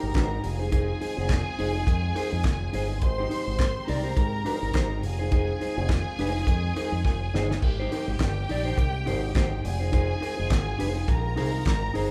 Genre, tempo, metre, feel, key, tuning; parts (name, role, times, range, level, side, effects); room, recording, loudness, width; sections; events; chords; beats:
disco; 104 BPM; 4/4; swing 56% on 16ths; F minor; A4 = 440 Hz
clear studio string section; second line; 0.0-12.1 s; G4 to C6; -36 LUFS; equal
mellow electric guitar; accompaniment; 0.0-12.1 s; Eb4 to D5; -34 LUFS; equal
mellow French horn section; sustained chords; 0.0-12.1 s; Eb3 to G4; -42 LUFS; equal
fingered electric bass with an envelope filter; bass; 0.0-12.1 s; F1 to Ab2; -32 LUFS; equal
damped 70s drum kit; drums; 0.1-12.1 s; crash cymbal, handclaps, hi-hat, kick drum, snare drum; -30 LUFS; equal
cowbell; percussion; 0.1-11.8 s; -45 LUFS; equal
moderate large studio reverb, RT60 1.4 s; band playing live in one room; -26 LUFS; mono
0.0-7.6 A section; 7.6-12.1 B section
drum fill 7.0-7.6
0.4 Fm7; 3.0 Abmaj7; 5.0 Fm7; 7.6 Abmaj7; 9.6 Fm7
0.15 | 0.72 1.30 1.87 2.45 | 3.02 3.60 4.17 4.75 | 5.32 5.90 6.47 7.05 | 7.63 8.20 8.78 9.35 | 9.93 10.51 11.08 11.66